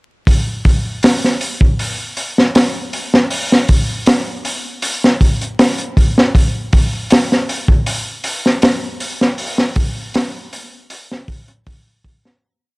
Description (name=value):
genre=trip hop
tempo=79 BPM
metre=4/4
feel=straight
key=none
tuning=none
part: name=crunchy breakbeat drum kit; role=drums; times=0.3-12.4 s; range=hi-hat, kick drum, snare drum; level=-13 LUFS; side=equal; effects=none
room=little or no reverb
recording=dry, gritty hardware recording, vinyl crackle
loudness=-13 LUFS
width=side -28 dB against mid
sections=0.3-12.4 groove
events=fade-out 8.4-12.4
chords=none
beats=| 0.27 1.03 1.79 2.55 | 3.31 4.07 4.83 5.59 | 6.35 7.11 7.87 8.63 | 9.39 10.15 10.91 11.67